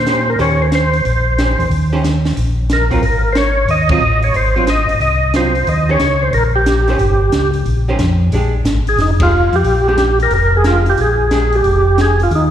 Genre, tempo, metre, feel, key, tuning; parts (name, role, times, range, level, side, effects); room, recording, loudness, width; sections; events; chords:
soul jazz organ trio; 181 BPM; 4/4; swing 65% on 8ths; Eb mixolydian; A4 = 440 Hz
percussive tonewheel organ; melody; 0.0-12.5 s; Eb4 to Eb5; -15 LUFS; equal; slow rotary speaker, overdrive, chorus vibrato, slapback echo
mellow tonewheel organ; bass; 0.0-12.5 s; F1 to Bb2; -15 LUFS; equal; slow rotary speaker
archtop guitar, miked and amplified; accompaniment; 0.1-11.8 s; Eb3 to C5; -22 LUFS; right 2 dB; slapback echo
compact cocktail drum kit; drums; 0.1-12.4 s; hi-hat, kick drum, ride cymbal, snare drum; -21 LUFS; equal; slapback echo
light reverb, small room reverb; live gig heard through the venue's PA, recital hall reverb; -12 LUFS; side -10 dB against mid
0.0-12.5 A section
band accent 3.9, 9.2
0.0 Eb13; 3.0 Ab6; 5.7 Eb9; 8.3 Bb6